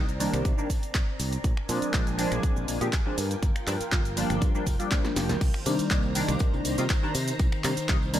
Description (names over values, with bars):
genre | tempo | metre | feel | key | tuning
filtered disco house | 121 BPM | 4/4 | straight | C minor | A4 = 440 Hz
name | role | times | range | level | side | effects
funky polysynth comp | accompaniment | 0.0-8.2 s | Eb3 to G4 | -30 LUFS | equal | chorus, phaser, sidechain pumping, low-pass filter
string machine, full ensemble | sustained chords | 0.0-8.2 s | Eb3 to Bb5 | -35 LUFS | left 1 dB | ensemble chorus, sidechain pumping, low-pass filter
modern bright fingered electric bass | bass | 0.0-8.2 s | F1 to C3 | -31 LUFS | equal | sidechain pumping, low-pass filter
punchy analog drum machine | drums | 0.1-8.2 s | crash cymbal, finger snaps, handclaps, hi-hat, shaker, snare drum | -32 LUFS | equal | overdrive, sidechain pumping on hats, sidechain pumping on perc, sidechain pumping on cymbals
tambourine | percussion | 0.1-8.2 s | none | -45 LUFS | equal | none
electronic kick drum | drums | 0.5-8.0 s | none | -26 LUFS | equal | none
room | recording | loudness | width
digital ambience | none | -24 LUFS | side -12 dB against mid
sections
0.0-5.4 A section; 5.4-8.2 B section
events
drum fill 4.9-5.4; drop 5.4-8.2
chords
0.0 Cm7; 1.4 Bb7; 3.2 Gm7; 5.4 Cm7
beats
0.45 0.95 | 1.44 1.94 2.44 2.93 | 3.43 3.92 4.42 4.92 | 5.41 5.91 6.40 6.90 | 7.39 7.89